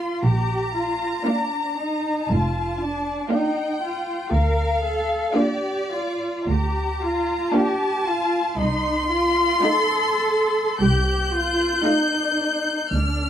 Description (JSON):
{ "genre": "classical, slow romantic movement for string orchestra", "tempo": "49-60 BPM", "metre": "4/4", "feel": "rubato", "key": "Bb major", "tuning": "A4 = 435 Hz", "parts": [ { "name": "warm symphonic violin section", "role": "melody", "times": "0.0-13.3 s", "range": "D5 to G6", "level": "-24 LUFS", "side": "left 3 dB", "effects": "none" }, { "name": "rich symphonic cello section", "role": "bass", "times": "0.0-13.3 s", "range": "D4 to Bb4", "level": "-24 LUFS", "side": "right 1 dB", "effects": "none" }, { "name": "warm symphonic double bass section", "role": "bass", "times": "0.2-13.3 s", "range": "F1 to D2", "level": "-23 LUFS", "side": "right 1 dB", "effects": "none" }, { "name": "rich symphonic violin section", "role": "second line", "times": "1.3-12.7 s", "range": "F4 to F5", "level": "-30 LUFS", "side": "left 3 dB", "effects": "none" }, { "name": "rich symphonic viola section", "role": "accompaniment", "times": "1.3-12.7 s", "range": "A3 to Eb4", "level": "-23 LUFS", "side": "right 2 dB", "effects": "none" } ], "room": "light reverb", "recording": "dark, warm production", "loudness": "-20 LUFS", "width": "side -10 dB against mid", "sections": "0.0-13.3 A section", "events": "none", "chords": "0.2 Bb; 4.3 Bb/D; 8.6 F7/C" }